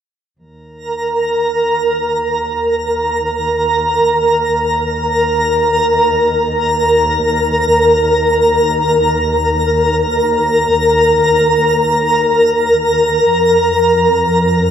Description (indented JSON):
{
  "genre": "ambient",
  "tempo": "free time",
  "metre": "none",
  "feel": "none",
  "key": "unclear",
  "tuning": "A4 = 440 Hz",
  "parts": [
    { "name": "dark chamber cello section", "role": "bass", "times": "0.4-14.7 s", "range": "Eb2 to F2", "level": "-22 LUFS", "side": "equal", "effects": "none" },
    { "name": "twinkling granular texture", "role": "texture", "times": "0.9-14.7 s", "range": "Bb4 to Bb5", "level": "-12 LUFS", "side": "equal", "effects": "built-in reverb" }
  ],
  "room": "wet huge ambient reverb, RT60 8.1 s",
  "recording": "dark, warm production",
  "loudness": "-11 LUFS",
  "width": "side -8 dB against mid",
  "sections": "0.4-14.7 A section",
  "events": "fade-in on cello section 0.4-14.7",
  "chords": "0.4 Eb5; 13.3 Fsus4",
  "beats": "free time"
}